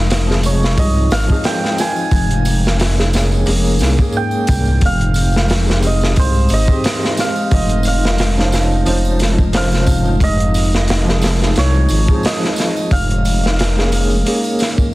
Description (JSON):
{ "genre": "trip hop", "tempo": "89 BPM", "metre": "4/4", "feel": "swing 55% on 16ths", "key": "F minor", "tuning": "A4 = 441 Hz", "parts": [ { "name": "hammered dulcimer", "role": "melody", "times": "0.0-14.9 s", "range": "C5 to Ab5", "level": "-22 LUFS", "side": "right 2 dB", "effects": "tape echo" }, { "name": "dark analog pad", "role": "sustained chords", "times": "0.0-14.9 s", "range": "Ab3 to Eb4", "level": "-24 LUFS", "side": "left 1 dB", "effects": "chorus, vintage 12-bit sampler grit" }, { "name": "dark detuned saw bass", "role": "bass", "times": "0.0-14.2 s", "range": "F1 to C2", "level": "-15 LUFS", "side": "equal", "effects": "none" }, { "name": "crunchy breakbeat drum kit", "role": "drums", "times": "0.1-14.9 s", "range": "hi-hat, kick drum, snare drum", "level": "-17 LUFS", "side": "equal", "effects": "none" }, { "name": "tambourine and triangle", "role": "percussion", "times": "0.1-14.9 s", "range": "none", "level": "-32 LUFS", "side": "right 3 dB", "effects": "none" }, { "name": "dark upright piano", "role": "accompaniment", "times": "0.3-14.9 s", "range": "C3 to C5", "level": "-22 LUFS", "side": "equal", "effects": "tremolo" } ], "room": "small room ambience", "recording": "dense, heavily limited modern master, vinyl crackle", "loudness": "-12 LUFS", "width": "side -18 dB against mid", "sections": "0.0-14.9 A section", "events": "none", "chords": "0.0 Fm7; 2.1 Bbm7/F; 4.8 Abmaj7/F; 7.5 Dbmaj7/F; 10.2 Fm7; 12.9 Bbm7/F" }